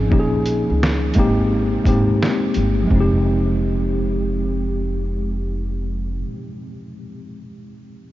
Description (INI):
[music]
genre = lo-fi hip hop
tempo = 86 BPM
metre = 4/4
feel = swing 65% on 16ths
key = F minor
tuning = A4 = 443 Hz
[part]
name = mellow tine electric piano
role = accompaniment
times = 0.0-8.1 s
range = F3 to Ab4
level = -21 LUFS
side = left 1 dB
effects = medium stereo tremolo, cassette tape
[part]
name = upright bass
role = bass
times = 0.0-6.2 s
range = F1 to Db2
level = -21 LUFS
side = equal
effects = none
[part]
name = trip hop sampler-style drum kit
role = drums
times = 0.1-3.1 s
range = hi-hat, kick drum, snare drum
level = -22 LUFS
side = equal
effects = vintage 12-bit sampler grit
[sound]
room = moderate huge ambient reverb, RT60 8.0 s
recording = dreamy mix soaked in reverb, cassette tape, nothing above 7.5 kHz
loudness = -17 LUFS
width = side -15 dB against mid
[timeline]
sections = 0.0-2.9 A section; 2.9-5.7 B section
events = none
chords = 0.1 Eb7sus4/Bb; 1.2 Abmaj7; 2.9 Fm7